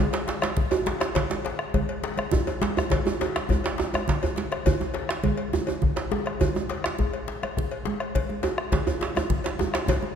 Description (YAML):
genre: west african traditional, West African drum ensemble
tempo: 137 BPM (dotted quarters)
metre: 12/8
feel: straight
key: none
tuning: none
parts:
  - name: cowbell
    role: percussion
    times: 0.1-10.0 s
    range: none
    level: -34 LUFS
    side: left 6 dB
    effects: none
  - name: djembe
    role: percussion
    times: 0.1-10.2 s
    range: none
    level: -32 LUFS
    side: left 5 dB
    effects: none
  - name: djembe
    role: percussion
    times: 0.1-10.0 s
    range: none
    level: -28 LUFS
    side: right 5 dB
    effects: none
  - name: bombo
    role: percussion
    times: 0.3-10.1 s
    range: none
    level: -29 LUFS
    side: left 2 dB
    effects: none
  - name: congas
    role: percussion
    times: 0.3-10.2 s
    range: none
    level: -31 LUFS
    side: right 5 dB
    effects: none
room: wet scoring stage reverb, RT60 2.1 s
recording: minimal, uncompressed stereo recording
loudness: -24 LUFS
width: side -8 dB against mid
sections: 0.0-10.2 A section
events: drum fill 3.9-4.7, 9.9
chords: none